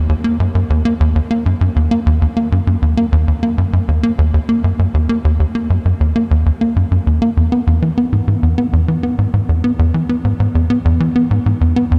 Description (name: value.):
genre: ambient.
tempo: 99 BPM.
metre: 4/4.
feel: straight.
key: unclear.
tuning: A4 = 440 Hz.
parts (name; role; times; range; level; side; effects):
tight sequencer bass; solo; 0.0-12.0 s; D#2 to B3; -15 LUFS; equal; delay.
room: wet huge ambient reverb, RT60 8.4 s.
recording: dark, warm production.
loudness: -15 LUFS.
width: mono.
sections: 0.0-12.0 A section.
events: none.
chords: none.